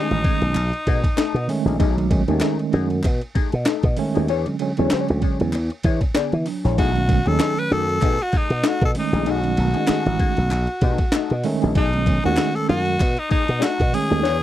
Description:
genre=funk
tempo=96 BPM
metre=4/4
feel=swing 56% on 16ths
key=B mixolydian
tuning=A4 = 435 Hz
part: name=raspy tenor saxophone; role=melody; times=0.0-1.5, 6.8-14.4 s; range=D#4 to B4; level=-24 LUFS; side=equal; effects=none
part: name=hollow-body jazz guitar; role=accompaniment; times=0.0-14.4 s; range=A3 to D5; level=-26 LUFS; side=left 13 dB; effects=wah
part: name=mellow tine electric piano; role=stabs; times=0.0-14.4 s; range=D3 to E4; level=-24 LUFS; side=right 5 dB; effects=medium stereo tremolo
part: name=slap bass with an envelope filter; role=bass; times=0.1-14.4 s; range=A1 to E3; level=-21 LUFS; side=equal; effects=none
part: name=breakbeat sampler-style drum kit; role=drums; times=0.1-14.4 s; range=hi-hat, kick drum, ride cymbal, snare drum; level=-22 LUFS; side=equal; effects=none
part: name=group handclap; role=percussion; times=0.6-13.8 s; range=none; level=-34 LUFS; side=left 3 dB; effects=none
room=little or no reverb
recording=dry, close 1970s-style studio recording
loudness=-18 LUFS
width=side -13 dB against mid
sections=0.0-14.4 A section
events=drum fill 14.2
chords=0.0 B13; 4.3 E13; 6.8 B13

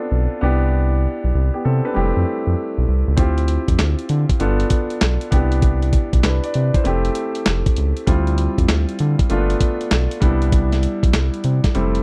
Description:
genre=R&B, new jack swing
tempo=98 BPM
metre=4/4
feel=swing 66% on 16ths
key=unclear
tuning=A4 = 442 Hz
part: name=warm grand piano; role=accompaniment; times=0.0-12.0 s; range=G3 to D5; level=-25 LUFS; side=equal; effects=none
part: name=round analog bass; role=bass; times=0.1-12.0 s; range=F1 to D3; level=-20 LUFS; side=equal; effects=none
part: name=dusty soul sampler-style drum kit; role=drums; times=3.2-12.0 s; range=handclaps, hi-hat, kick drum, snare drum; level=-21 LUFS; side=equal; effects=none
room=digital ambience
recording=dry, close 1970s-style studio recording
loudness=-18 LUFS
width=mono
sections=0.0-12.0 A section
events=none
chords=0.4 Cmaj7; 2.0 Fmaj7; 3.2 Dm11; 4.4 G7; 5.3 Cmaj7; 6.8 Fmaj7; 8.1 Dm11; 9.3 G7; 10.2 Cmaj7

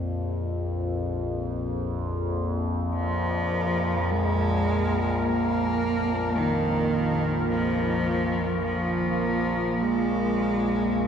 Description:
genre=dark ambient drone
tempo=free time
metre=none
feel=none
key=unclear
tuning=A4 = 440 Hz
part: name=deep dark ambient pad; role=sustained chords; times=0.0-11.1 s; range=Bb3 to F5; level=-30 LUFS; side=right 2 dB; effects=chorus, built-in reverb
part: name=overtone-sweeping drone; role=drone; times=0.0-11.1 s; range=Bb1 to F2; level=-28 LUFS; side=left 1 dB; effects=chorus, built-in reverb
part: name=rich cello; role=melody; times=3.0-11.1 s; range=Eb3 to Bb3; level=-27 LUFS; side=equal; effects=tape echo
part: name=bubbling stepped-filter texture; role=texture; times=3.0-11.1 s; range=Bb4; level=-33 LUFS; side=right 1 dB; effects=chorus, built-in reverb
room=wet huge ambient reverb, RT60 8.7 s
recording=none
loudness=-23 LUFS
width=side -8 dB against mid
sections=0.0-11.1 A section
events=fade-in on ambient pad 0.0-11.1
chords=0.0 Bb5

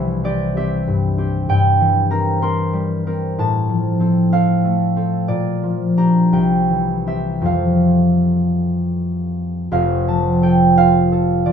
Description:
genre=classical, solo harp piece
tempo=52-64 BPM (dotted quarters)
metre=6/8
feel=rubato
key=F major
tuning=A4 = 440 Hz
part: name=concert harp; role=solo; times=0.0-11.5 s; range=F1 to C6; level=-15 LUFS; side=equal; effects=none
room=light reverb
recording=minimal, uncompressed stereo recording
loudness=-15 LUFS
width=side -7 dB against mid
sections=0.0-9.7 A section; 9.7-11.5 B section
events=none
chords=0.0 C; 1.5 C7/G; 3.4 F/A; 5.3 Gm7/Bb; 6.3 C; 7.5 F

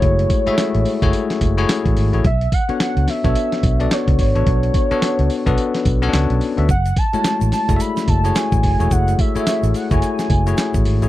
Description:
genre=R&B, new jack swing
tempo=108 BPM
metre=4/4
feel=swing 60% on 16ths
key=F# minor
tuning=A4 = 439 Hz
part: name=warm velvety synth lead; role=melody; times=0.0-10.7 s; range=C#5 to B5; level=-23 LUFS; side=right 2 dB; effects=chorus, slapback echo
part: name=bell-like tine electric piano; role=accompaniment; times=0.0-11.1 s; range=G#3 to E5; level=-21 LUFS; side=left 5 dB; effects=none
part: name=vintage muted fingered electric bass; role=bass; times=0.0-11.1 s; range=E1 to D2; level=-18 LUFS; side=right 1 dB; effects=none
part: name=dusty soul sampler-style drum kit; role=drums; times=0.0-11.1 s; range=handclaps, hi-hat, kick drum, snare drum, tambourine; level=-20 LUFS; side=right 1 dB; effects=none
part: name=tube shaker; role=percussion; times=6.7-11.1 s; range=none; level=-39 LUFS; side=right 17 dB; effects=none
room=little or no reverb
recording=dry, close 1970s-style studio recording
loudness=-15 LUFS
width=side -15 dB against mid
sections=0.0-11.1 A section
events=none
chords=0.0 F#m9; 2.2 Bm9; 6.7 F#m9

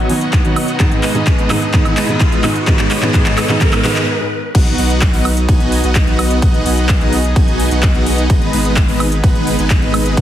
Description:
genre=EDM, festival progressive house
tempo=128 BPM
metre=4/4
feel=straight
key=B major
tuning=A4 = 441 Hz
part: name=supersaw pad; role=sustained chords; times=0.0-10.2 s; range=G#3 to D#5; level=-24 LUFS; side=right 1 dB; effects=sidechain pumping
part: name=dense compressed supersaw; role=riff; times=0.0-10.2 s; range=G#3 to G#5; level=-18 LUFS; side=right 1 dB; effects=sidechain pumping, low-pass filter, ping-pong delay
part: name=riser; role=sound effects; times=0.0-4.1 s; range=none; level=-24 LUFS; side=equal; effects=none
part: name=felt-muted upright piano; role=accompaniment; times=0.1-4.0 s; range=G#2 to D#4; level=-19 LUFS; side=equal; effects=sidechain pumping, ping-pong delay
part: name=big-room dance drum kit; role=drums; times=0.1-10.2 s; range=crash cymbal, handclaps, hi-hat, ride cymbal, woodblock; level=-20 LUFS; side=equal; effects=high-pass filter on hats, high-pass filter on snare, high-pass filter on perc, high-pass filter on cymbals, high-pass filter on room
part: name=electronic kick drum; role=drums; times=0.3-10.2 s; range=none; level=-14 LUFS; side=equal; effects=none
part: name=saturated sub bass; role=bass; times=4.5-10.2 s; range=G#1 to B1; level=-18 LUFS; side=equal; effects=sidechain pumping
room=light reverb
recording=heavily compressed radio sound, multiband compression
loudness=-11 LUFS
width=side -11 dB against mid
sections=0.0-4.5 A section; 4.5-10.2 B section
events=build-up 0.0-4.5; drum fill 0.0-4.1; riser 0.0-4.1; stop 4.1-4.5; drop 4.5-10.2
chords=0.0 B; 0.8 G#m; 4.5 B; 8.3 G#m

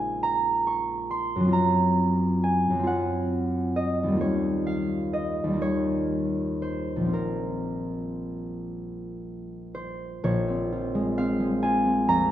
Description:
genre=classical, solo harp piece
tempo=38-46 BPM (dotted quarters)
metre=6/8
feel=rubato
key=Bb minor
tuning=A4 = 437 Hz
part: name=concert harp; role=solo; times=0.0-12.3 s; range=Bb1 to Db6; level=-24 LUFS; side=equal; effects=none
room=moderate concert hall reverb, RT60 1.9 s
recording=dark, warm production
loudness=-23 LUFS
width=side -12 dB against mid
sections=0.0-10.2 A section; 10.2-12.3 B section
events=none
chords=0.0 Bbm7; 1.5 Gbmaj7#11; 4.2 Eb9; 7.1 Bbmadd9; 10.2 Bbm9

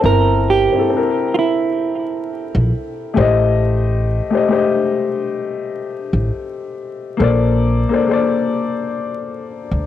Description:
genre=hip hop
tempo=67 BPM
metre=4/4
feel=swing 61% on 16ths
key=unclear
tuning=A4 = 440 Hz
part: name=dark upright piano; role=accompaniment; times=0.0-9.9 s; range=A3 to Eb5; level=-18 LUFS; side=left 5 dB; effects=low-pass filter, cassette tape
part: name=upright bass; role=bass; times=0.0-9.9 s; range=G1 to D2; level=-16 LUFS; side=equal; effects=none
part: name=semi-hollow electric guitar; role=melody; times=0.1-3.1 s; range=E4 to Bb4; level=-18 LUFS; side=right 6 dB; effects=low-pass filter, analog delay
room=light reverb, studio reverb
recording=home recording on cassette, vinyl crackle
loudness=-15 LUFS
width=side -11 dB against mid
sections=0.0-9.9 A section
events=none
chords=0.0 C7/G; 3.2 Am7b5; 7.2 Bbmaj9

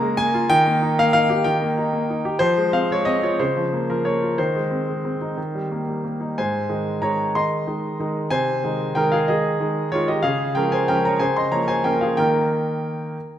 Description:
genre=classical-period piano sonatina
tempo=62 BPM (dotted quarters)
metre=6/8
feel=straight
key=Ab major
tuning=A4 = 440 Hz
part: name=clear concert grand piano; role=solo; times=0.0-13.2 s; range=Ab2 to C6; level=-19 LUFS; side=equal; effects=none
room=moderate recital hall reverb, RT60 1.6 s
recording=none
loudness=-19 LUFS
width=side -10 dB against mid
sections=0.0-6.4 A section; 6.4-13.4 B section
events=none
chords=0.5 Eb; 2.4 Fm; 3.4 Bbm/Db; 4.4 Ab/Eb; 5.4 Eb; 6.4 Ab; 8.3 Ab/C; 10.2 Db; 11.2 Bbm/Db; 12.2 Eb

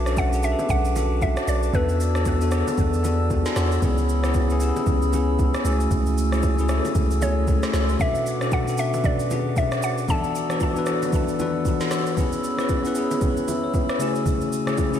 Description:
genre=amapiano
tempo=115 BPM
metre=4/4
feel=swing 58% on 16ths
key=B dorian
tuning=A4 = 440 Hz
part: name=mallet-like synth pluck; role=melody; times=0.0-2.2, 7.2-10.6 s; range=B4 to A5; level=-28 LUFS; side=equal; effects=chorus, ping-pong delay
part: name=bell-like tine electric piano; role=accompaniment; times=0.0-15.0 s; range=B2 to G#5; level=-25 LUFS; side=left 3 dB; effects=none
part: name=pipe organ, stopped flute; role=sustained chords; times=0.0-15.0 s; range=A3 to E6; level=-30 LUFS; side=right 1 dB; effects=sidechain pumping
part: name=punchy sub bass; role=bass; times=0.0-8.0 s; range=B1 to E2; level=-23 LUFS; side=equal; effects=none
part: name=smooth R&B drum kit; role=drums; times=0.1-15.0 s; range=kick drum, rim click, shaker, snare drum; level=-26 LUFS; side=right 1 dB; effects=none
part: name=bongos and congas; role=percussion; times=0.2-14.9 s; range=none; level=-35 LUFS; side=right 3 dB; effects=none
room=moderate huge ambient reverb, RT60 4.8 s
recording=dreamy mix soaked in reverb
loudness=-20 LUFS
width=side -9 dB against mid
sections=0.0-15.0 A section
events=none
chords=0.0 Bm7; 1.7 E9sus4; 3.8 C#m7; 5.7 F#m9/C#; 8.0 Bm7; 10.1 E9sus4; 12.2 C#m7; 14.0 F#m9/C#

